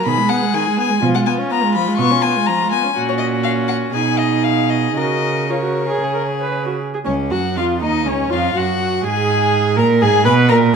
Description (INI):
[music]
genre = quick classical-period movement for string quartet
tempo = 113-126 BPM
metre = 4/4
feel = rubato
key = F# major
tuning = A4 = 440 Hz
[part]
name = warm violin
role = melody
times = 0.0-10.6 s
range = C#5 to C#6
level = -20 LUFS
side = left 8 dB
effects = none
[part]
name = warm violin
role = second line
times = 0.0-10.6 s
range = C#4 to B4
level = -22 LUFS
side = left 3 dB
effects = none
[part]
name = warm viola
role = accompaniment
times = 0.0-10.8 s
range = D#3 to B4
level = -20 LUFS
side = right 3 dB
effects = none
[part]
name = rich cello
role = bass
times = 0.1-10.8 s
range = C#2 to C#3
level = -19 LUFS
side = right 5 dB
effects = none
[sound]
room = moderate recital hall reverb, RT60 1.4 s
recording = minimal, uncompressed stereo recording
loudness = -15 LUFS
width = side -6 dB against mid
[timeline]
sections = 0.0-7.1 A section; 7.1-10.8 B section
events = none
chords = 0.1 G#m/B; 1.0 C#7/B; 3.0 F#/A#; 3.9 G#m/B; 5.0 F#/C#; 6.0 C#5; 7.1 F#5/C#; 9.1 G#madd9